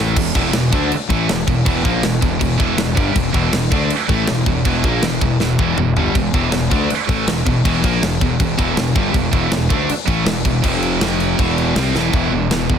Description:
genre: heavy metal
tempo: 160 BPM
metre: 4/4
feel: straight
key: E minor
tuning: A4 = 440 Hz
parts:
  - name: scooped high-gain guitar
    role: riff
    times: 0.0-12.8 s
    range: E2 to D4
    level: -20 LUFS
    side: right 10 dB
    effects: distortion
  - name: sludgy distorted guitar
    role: riff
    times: 0.0-12.8 s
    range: E2 to D4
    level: -21 LUFS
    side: left 10 dB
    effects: overdrive
  - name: fuzz fingered electric bass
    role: bass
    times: 0.0-12.8 s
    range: E1 to D2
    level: -22 LUFS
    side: equal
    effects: overdrive
  - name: tight metal drum kit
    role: drums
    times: 0.2-12.8 s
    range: crash cymbal, kick drum, snare drum, toms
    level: -20 LUFS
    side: equal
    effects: soft clipping on kick
room: small room ambience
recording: dense, heavily limited modern master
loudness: -14 LUFS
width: side -8 dB against mid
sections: 0.2-12.1 A section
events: drum fill 0.0, 5.4-6.2, 11.9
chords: 0.2 Em; 10.6 F5; 11.4 Em; 12.1 E5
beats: | 0.16 0.54 0.91 1.29 | 1.66 2.04 2.41 2.79 | 3.16 3.54 3.91 4.29 | 4.66 5.03 5.41 5.78 | 6.16 6.53 6.90 7.28 | 7.65 8.02 8.40 8.77 | 9.14 9.52 9.89 10.27 | 10.64 11.01 11.38 11.76 | 12.13 12.51

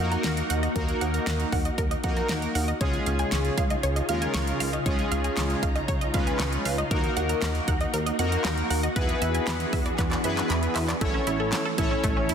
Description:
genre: synth-pop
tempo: 117 BPM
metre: 4/4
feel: straight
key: unclear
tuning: A4 = 439 Hz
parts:
  - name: analog synth brass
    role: accompaniment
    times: 0.0-12.3 s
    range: G#3 to C#5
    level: -29 LUFS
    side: left 1 dB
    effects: chorus
  - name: soft string machine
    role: sustained chords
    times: 0.0-12.3 s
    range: C#3 to A#5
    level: -31 LUFS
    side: equal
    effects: ensemble chorus
  - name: wide unison pluck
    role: arpeggios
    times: 0.0-12.3 s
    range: A3 to A#6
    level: -32 LUFS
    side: right 2 dB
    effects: auto-pan, digital delay
  - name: chorused synth bass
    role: bass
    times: 0.0-12.3 s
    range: A1 to A2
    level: -29 LUFS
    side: equal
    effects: none
  - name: pop drum kit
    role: drums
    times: 0.1-12.3 s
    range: handclaps, hi-hat, kick drum, snare drum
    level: -29 LUFS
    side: equal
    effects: none
room: moderate scoring stage reverb, RT60 1.4 s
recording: dense, heavily limited modern master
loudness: -23 LUFS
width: side -8 dB against mid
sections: 0.0-11.0 A section; 11.0-12.3 B section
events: drum fill 10.0-11.0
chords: 0.0 D#m; 2.8 C#add9; 6.9 D#m; 9.0 E7; 11.0 A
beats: 0.24 | 0.76 1.27 1.78 2.29 | 2.81 3.32 3.83 4.35 | 4.86 5.37 5.88 6.40 | 6.91 7.42 7.94 8.45 | 8.96 9.47 9.99 10.50 | 11.01 11.53 12.04

